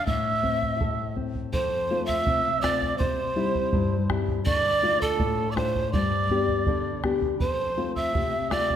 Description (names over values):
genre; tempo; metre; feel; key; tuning
andean folk, Andean ensemble; 82 BPM; 2/4; straight; unclear; A4 = 439 Hz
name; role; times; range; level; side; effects
breathy pan flute; melody; 0.0-8.8 s; A4 to E5; -27 LUFS; right 2 dB; none
quena; second line; 0.0-8.8 s; A5 to E6; -30 LUFS; right 4 dB; none
nylon-string guitar; accompaniment; 0.0-8.8 s; F2 to A4; -28 LUFS; left 4 dB; none
bombo; percussion; 0.1-8.8 s; none; -30 LUFS; right 1 dB; none
room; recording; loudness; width
wet recital hall reverb, RT60 1.4 s; none; -23 LUFS; side -9 dB against mid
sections
0.0-1.5 A section; 1.5-8.8 A section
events
none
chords
0.1 Am; 1.5 F; 3.0 C; 4.5 Dm; 5.9 G; 7.4 F